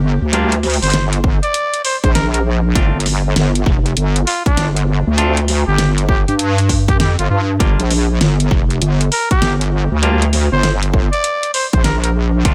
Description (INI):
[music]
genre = glitch hop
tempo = 99 BPM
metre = 4/4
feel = swing 63% on 16ths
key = G minor pentatonic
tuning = A4 = 440 Hz
[part]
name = wobble bass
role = bass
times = 0.0-12.5 s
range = F1 to G2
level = -17 LUFS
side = equal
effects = chorus, tube saturation
[part]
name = semi-hollow electric guitar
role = stabs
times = 0.3-12.5 s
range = G3 to F4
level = -23 LUFS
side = equal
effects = sidechain pumping, tape echo
[part]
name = pop drum kit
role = drums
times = 0.3-12.5 s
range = hi-hat, snare drum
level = -22 LUFS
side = equal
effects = none
[part]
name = growling trumpet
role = melody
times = 0.8-12.1 s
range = D4 to D5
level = -24 LUFS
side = equal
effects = tape echo
[part]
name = electronic kick drum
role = drums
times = 1.2-12.5 s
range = none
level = -18 LUFS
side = equal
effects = none
[sound]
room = digital ambience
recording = none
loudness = -15 LUFS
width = mono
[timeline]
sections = 0.0-12.5 A section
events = none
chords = 0.0 Gm; 2.8 Dm; 7.6 Gm7